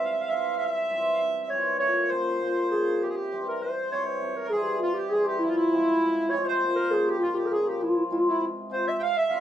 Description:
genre	klezmer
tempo	100 BPM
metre	2/4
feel	straight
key	C phrygian dominant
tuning	A4 = 440 Hz
part	dark clarinet	melody	0.0-9.4 s	E4 to F5	-26 LUFS	right 1 dB	none
part	accordion	second line	0.0-9.4 s	E4 to G5	-30 LUFS	right 2 dB	none
part	cimbalom	accompaniment	0.0-9.4 s	Bb2 to F4	-29 LUFS	left 2 dB	none
room	wet small room reverb, RT60 0.5 s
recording	band playing live in one room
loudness	-23 LUFS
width	side -10 dB against mid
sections	0.0-4.2 A section; 4.2-9.4 B section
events	none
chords	0.0 C; 1.8 Bbm; 3.0 C; 5.4 Fm; 6.6 Bbm; 7.8 Fm

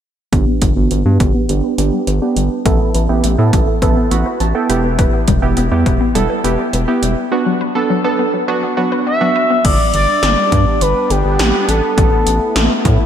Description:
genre	synth-pop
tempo	103 BPM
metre	4/4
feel	straight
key	G major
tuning	A4 = 440 Hz
part	warm analog keys	accompaniment	0.3-9.6 s	B3 to B5	-17 LUFS	right 4 dB	chorus, low-pass filter
part	wide unison pluck	arpeggios	0.3-9.6 s	F#3 to B4	-22 LUFS	left 5 dB	wide subtle chorus, low-pass filter, ping-pong delay
part	round analog bass	bass	0.3-13.0 s	E1 to A2	-16 LUFS	equal	none
part	80s electronic pad drums	drums	0.3-13.0 s	crash cymbal, hi-hat, kick drum, snare drum	-16 LUFS	equal	gated reverb
part	expressive synth lead	melody	9.1-12.9 s	G4 to E5	-15 LUFS	equal	chorus, ping-pong delay
part	sweeping resonant pad	sustained chords	9.6-13.1 s	G3 to E4	-20 LUFS	equal	chorus
room	moderate lush hall reverb, RT60 2.6 s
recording	bright 1980s-style digital production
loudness	-12 LUFS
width	side -9 dB against mid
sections	0.3-9.6 A section; 9.6-13.1 B section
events	filter sweep 0.3-9.6; synth keys fill 3.8-5.0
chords	0.3 G; 2.7 Asus2; 4.7 Em; 7.3 Bm; 9.6 G; 12.0 Asus2

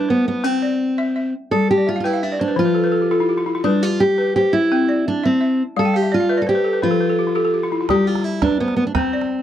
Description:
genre	west african traditional, West African string and xylophone music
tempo	113 BPM (dotted quarters)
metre	12/8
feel	straight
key	G mixolydian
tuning	A4 = 439 Hz
part	fingerpicked steel-string acoustic guitar	melody	0.0-9.4 s	B3 to A4	-18 LUFS	right 1 dB	none
part	balafon	arpeggios	0.0-9.4 s	F3 to G5	-20 LUFS	left 2 dB	none
part	calabash	percussion	7.9-9.4 s	none	-27 LUFS	right 5 dB	none
room	little or no reverb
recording	dry, close 1970s-style studio recording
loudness	-16 LUFS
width	side -10 dB against mid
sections	0.0-9.4 A section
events	balafon fill 1.8-3.6, 5.8-7.9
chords	0.4 C; 1.5 G; 2.6 F; 3.6 G; 4.7 C; 5.8 G; 6.8 F; 7.9 G

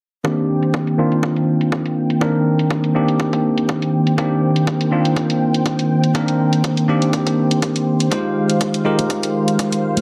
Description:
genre	deep house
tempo	122 BPM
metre	4/4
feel	swing 54% on 16ths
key	C minor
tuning	A4 = 440 Hz
part	warm analog pad	sustained chords	0.2-10.0 s	Eb3 to G5	-25 LUFS	equal	chorus, sidechain pumping
part	bell-like tine electric piano	stabs	0.2-10.0 s	Eb3 to C5	-19 LUFS	equal	sidechain pumping, low-pass filter, delay
part	electronic hi-hat	drums	0.2-10.0 s	none	-30 LUFS	equal	overdrive, low-pass filter on hats, low-pass filter on room
part	electronic kick drum	drums	0.2-9.7 s	none	-28 LUFS	equal	overdrive, high-pass filter on kick, high-pass filter on room
part	congas	percussion	9.0-10.0 s	none	-26 LUFS	equal	sidechain pumping on perc
room	light reverb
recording	heavily compressed radio sound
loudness	-18 LUFS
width	mono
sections	0.2-10.0 A section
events	filter sweep on tine electric piano 0.2-10.0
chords	0.2 Cm7; 8.1 Fm7

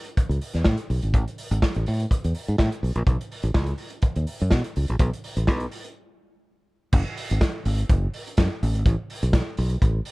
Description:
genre	disco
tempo	124 BPM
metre	4/4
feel	straight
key	unclear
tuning	A4 = 440 Hz
part	vintage drum kit	drums	0.0-10.1 s	crash cymbal, hi-hat, kick drum, snare drum	-24 LUFS	equal	none
part	fingered electric bass	bass	0.3-10.0 s	F#1 to B2	-23 LUFS	equal	none
room	little or no reverb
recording	dark, warm production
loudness	-21 LUFS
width	side -23 dB against mid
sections	0.0-6.9 A section; 6.9-10.1 B section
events	break 6.0-6.9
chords	none

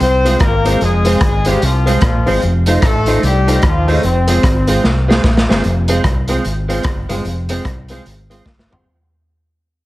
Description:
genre	ska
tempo	149 BPM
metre	4/4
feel	swing 61% on 8ths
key	F minor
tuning	A4 = 435 Hz
part	warm horn section	melody	0.0-4.8 s	Db3 to C5	-17 LUFS	left 2 dB	slapback echo
part	fingered electric bass	bass	0.0-8.8 s	F1 to Eb2	-16 LUFS	equal	none
part	raw garage drum kit	drums	0.0-8.8 s	hi-hat, kick drum, rim click, snare drum, toms	-16 LUFS	equal	none
part	dark upright piano	stabs	0.2-8.8 s	C4 to C5	-21 LUFS	left 2 dB	none
part	clean electric guitar	accompaniment	0.3-8.8 s	Ab3 to F4	-22 LUFS	right 4 dB	ensemble chorus, slapback echo
room	light reverb, small room ambience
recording	heavily compressed radio sound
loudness	-11 LUFS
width	side -17 dB against mid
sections	0.0-5.6 A section; 5.6-8.9 B section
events	drum fill 4.8-5.6, 8.5-8.9; fade-out 5.6-8.9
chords	0.0 Fm; 2.4 F7; 4.0 Fm

